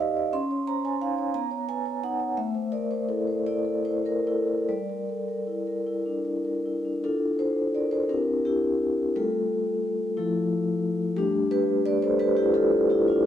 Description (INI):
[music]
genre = classical, contemporary piece for solo vibraphone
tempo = 47-61 BPM (dotted quarters)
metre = 6/8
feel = rubato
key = unclear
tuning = A4 = 441 Hz
[part]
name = vibraphone with soft mallets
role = solo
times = 0.0-13.3 s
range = F3 to C6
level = -24 LUFS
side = equal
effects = none
[sound]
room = wet stone room reverb, RT60 1.1 s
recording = heard from further back in the room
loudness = -24 LUFS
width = side -10 dB against mid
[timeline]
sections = 0.0-7.0 A section; 7.0-13.3 B section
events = none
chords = 0.3 C#sus2; 1.4 Badd9; 2.4 Am; 4.7 Gm6; 7.0 Dmadd9; 8.1 Cadd9; 9.2 Gsus2; 10.2 Fmaj7; 11.2 Gadd9